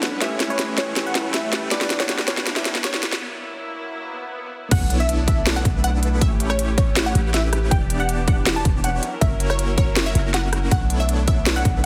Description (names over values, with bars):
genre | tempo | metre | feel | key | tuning
future bass | 160 BPM | 4/4 | half-time | B minor | A4 = 440 Hz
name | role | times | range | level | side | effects
unison pluck | melody | 0.0-11.8 s | C#5 to A5 | -30 LUFS | equal | sidechain pumping, digital delay
barky tine electric piano | accompaniment | 0.0-3.0 s | C#4 to F#5 | -34 LUFS | equal | overdrive, sidechain pumping, tape echo
bright symphonic string section | sustained chords | 0.0-11.9 s | E2 to C#5 | -34 LUFS | equal | sidechain pumping
supersaw chords | riff | 0.0-11.9 s | A3 to D5 | -31 LUFS | equal | phaser, sidechain pumping
trap drum kit | drums | 0.0-11.7 s | crash cymbal, hi-hat, rim click, snare drum | -26 LUFS | equal | studio ambience
riser, swell and sub drop | sound effects | 0.0-6.2 s | none | -35 LUFS | equal | none
warm 808-style bass | bass | 4.7-11.9 s | E1 to B1 | -25 LUFS | equal | sidechain pumping
electronic kick drum | drums | 4.7-11.7 s | none | -22 LUFS | equal | studio ambience
room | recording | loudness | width
light reverb | heavily compressed radio sound, multiband compression, high-pass filter | -21 LUFS | mono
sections
0.0-4.7 A section; 4.7-11.9 B section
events
build-up 0.0-4.7; drum fill 0.0-3.2; filter sweep on supersaw synth 0.0-4.7; break 3.2-4.7; swell 4.1-4.7; drop 4.7-11.9; impact 4.7-6.2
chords
0.2 A7; 1.7 Em7; 3.0 F#7; 4.7 Bm11; 6.2 A7; 7.7 Em7; 9.0 F#7; 10.7 Bm11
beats
| 0.21 0.59 0.96 1.34 | 1.72 2.09 2.46 2.84 | 3.21 3.59 3.96 4.34 | 4.71 5.09 5.46 5.84 | 6.21 6.59 6.96 7.34 | 7.71 8.09 8.46 8.84 | 9.21 9.59 9.96 10.34 | 10.71 11.09 11.46 11.84